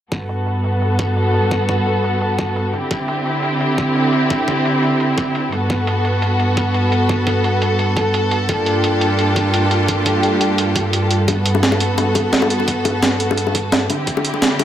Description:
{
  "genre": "liquid drum and bass",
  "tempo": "172 BPM",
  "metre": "4/4",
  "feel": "swing 54% on 16ths",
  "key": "G major",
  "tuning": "A4 = 439 Hz",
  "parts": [
    { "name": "rich studio string section", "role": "sustained chords", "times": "0.1-14.6 s", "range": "G2 to A4", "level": "-16 LUFS", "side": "equal", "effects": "low-pass filter" },
    { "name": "breakbeat sampler-style drum kit", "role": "drums", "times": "0.1-14.6 s", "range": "hi-hat, snare drum", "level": "-21 LUFS", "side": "right 2 dB", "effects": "low-pass filter on hats, low-pass filter on snare" },
    { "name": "electronic kick drum", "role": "drums", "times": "0.1-14.1 s", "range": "none", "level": "-24 LUFS", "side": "equal", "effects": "high-pass filter on kick" },
    { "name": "bongos", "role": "percussion", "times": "11.3-14.6 s", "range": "none", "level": "-22 LUFS", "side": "left 5 dB", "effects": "none" }
  ],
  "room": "moderate plate reverb, RT60 2.5 s",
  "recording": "none",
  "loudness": "-15 LUFS",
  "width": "side -10 dB against mid",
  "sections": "0.1-14.6 A section",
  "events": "filter sweep on drum 0.1-14.6",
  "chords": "0.1 Gmaj7; 2.7 D7sus4; 5.5 Gmaj7; 8.5 Gm9; 11.3 Gmaj7; 13.9 D7sus4"
}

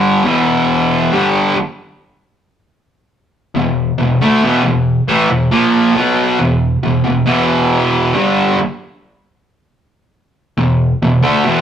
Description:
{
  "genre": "metal",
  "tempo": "68 BPM",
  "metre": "4/4",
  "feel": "straight",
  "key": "E minor",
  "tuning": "A4 = 439 Hz",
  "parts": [
    { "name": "fuzz guitar", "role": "solo", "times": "0.0-11.6 s", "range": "E2 to B3", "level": "-11 LUFS", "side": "equal", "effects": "distortion" }
  ],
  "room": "moderate stone room reverb, RT60 1.0 s",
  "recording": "rough rehearsal-room recording, tube saturation",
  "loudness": "-11 LUFS",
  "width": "side -9 dB against mid",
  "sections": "0.0-11.6 A section",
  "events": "none",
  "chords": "0.0 Em"
}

